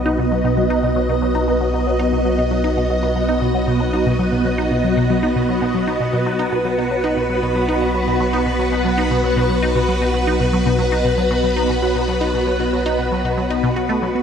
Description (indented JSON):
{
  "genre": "ambient, sequencer-driven space music",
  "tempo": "116 BPM",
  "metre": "4/4",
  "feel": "straight",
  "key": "unclear",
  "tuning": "A4 = 440 Hz",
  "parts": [
    { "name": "string machine, full ensemble", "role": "sustained chords", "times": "0.0-14.2 s", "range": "B3 to D#5", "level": "-18 LUFS", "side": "equal", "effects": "phaser, ensemble chorus" },
    { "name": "resonant blip pluck", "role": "riff", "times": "0.0-14.2 s", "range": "B2 to F#4", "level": "-21 LUFS", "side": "equal", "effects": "phaser, ping-pong delay" },
    { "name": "warm sub bass", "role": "bass", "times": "0.0-14.2 s", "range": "B1", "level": "-24 LUFS", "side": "equal", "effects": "none" }
  ],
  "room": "wet lush hall reverb, RT60 2.6 s",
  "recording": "dreamy mix soaked in reverb",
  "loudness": "-16 LUFS",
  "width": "side -7 dB against mid",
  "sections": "0.0-14.2 A section",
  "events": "none",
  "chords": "0.0 B",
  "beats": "0.44 0.96 1.48 | 2.00 2.51 3.03 3.55 | 4.07 4.58 5.10 5.62 | 6.13 6.65 7.17 7.68 | 8.20 8.72 9.24 9.75 | 10.27 10.79 11.31 11.82 | 12.34 12.86 13.38 13.89"
}